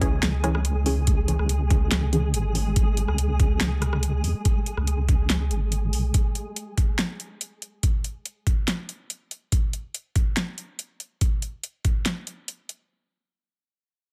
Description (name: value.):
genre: deep dubstep.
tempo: 142 BPM.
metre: 4/4.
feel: half-time.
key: C# minor.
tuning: A4 = 439 Hz.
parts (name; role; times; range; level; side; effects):
filtered dub chord stab; stabs; 0.0-2.6 s; E3 to G#4; -32 LUFS; equal; chorus, dub echo.
deep soft wobble bass; bass; 0.0-6.1 s; G#1 to E2; -26 LUFS; equal; chorus, tube saturation.
deep house drum kit; drums; 0.0-12.8 s; hi-hat, rim click, snare drum; -30 LUFS; equal; none.
electronic kick drum; drums; 0.0-11.9 s; none; -24 LUFS; equal; none.
flickering grainy texture; texture; 0.0-6.2 s; G#3 to G#4; -36 LUFS; equal; built-in reverb.
room: digital ambience.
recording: none.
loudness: -25 LUFS.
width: mono.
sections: 0.0-12.9 A section.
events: filter sweep on wobble bass 0.0-6.1; filter sweep on synth stab 0.0-2.8.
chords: 0.0 C#m.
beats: 0.23 0.65 | 1.07 1.49 1.92 2.34 | 2.76 3.18 3.61 4.03 | 4.45 4.87 5.30 5.72 | 6.14 6.56 6.99 7.41 | 7.83 8.25 8.68 9.10 | 9.52 9.94 10.37 10.79 | 11.21 11.63 12.06 12.48.